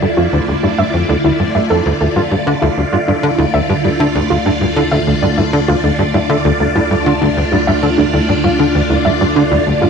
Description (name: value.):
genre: ambient.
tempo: 98 BPM.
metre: 4/4.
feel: straight.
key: D minor.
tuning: A4 = 440 Hz.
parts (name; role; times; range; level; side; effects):
phased string machine; sustained chords; 0.0-9.9 s; D3 to D5; -16 LUFS; equal; ensemble chorus, phaser.
tight sequencer bass; riff; 0.0-9.9 s; D2 to D3; -15 LUFS; equal; wide subtle chorus, tape echo.
analog drone; bass; 0.0-9.9 s; D2; -25 LUFS; equal; chorus.
warbly dusty pluck; arpeggios; 0.2-9.9 s; D4 to E5; -19 LUFS; moving between left 3 dB and right 5 dB; chorus, auto-pan, tape echo.
room: moderate plate reverb, RT60 2.5 s.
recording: none.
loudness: -11 LUFS.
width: side -6 dB against mid.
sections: 0.0-9.9 A section.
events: fade-in on synth drone 0.0-9.9.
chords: 0.0 Dmadd9.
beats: | 0.02 0.63 1.25 1.86 | 2.47 3.08 3.69 4.31 | 4.92 5.53 6.14 6.75 | 7.37 7.98 8.59 9.20 | 9.82.